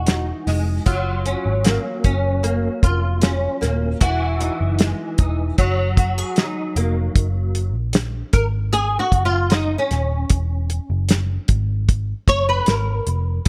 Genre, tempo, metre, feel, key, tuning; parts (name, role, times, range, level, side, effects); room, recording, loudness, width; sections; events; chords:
indie pop, bedroom pop; 76 BPM; 4/4; straight; A4 = 439 Hz
flamenco guitar; accompaniment; 0.0-13.5 s; E3 to Db5; -24 LUFS; equal; ensemble chorus, vibrato effect
vintage muted picked electric bass; bass; 0.0-13.5 s; Eb1 to Bb1; -23 LUFS; equal
damped 70s drum kit; drums; 0.1-13.5 s; hi-hat, kick drum, snare drum; -20 LUFS; equal
small room ambience; -20 LUFS; mono
0.0-7.2 A section; 7.2-13.5 B section
nylon-string guitar solo 7.2-13.5
0.0 Emaj9; 0.9 Gbmaj7; 4.0 Emaj9; 5.6 Gb69; 7.2 Gb; 10.3 Eadd9